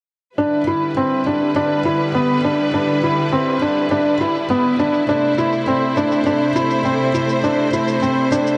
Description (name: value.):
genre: piano and strings electronica.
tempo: 102 BPM.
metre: 4/4.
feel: straight.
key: E minor.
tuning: A4 = 443 Hz.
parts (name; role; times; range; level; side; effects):
rich studio string section; sustained chords; 0.4-8.6 s; C3 to C5; -23 LUFS; equal; shimmer reverb.
felt-muted upright piano; riff; 0.4-8.5 s; B3 to E4; -19 LUFS; equal; digital delay, shimmer reverb.
shaker; drums; 0.4-8.6 s; none; -40 LUFS; equal; overdrive, low-pass filter on perc.
room: moderate huge ambient reverb, RT60 4.0 s.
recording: none.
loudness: -18 LUFS.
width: mono.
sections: 0.4-8.6 A section.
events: filter sweep on drum 0.4-8.6.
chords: 0.4 Em7; 5.1 Am.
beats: | 0.38 0.97 1.56 2.15 | 2.73 3.32 3.91 4.50 | 5.09 5.68 6.26 6.85 | 7.44 8.03.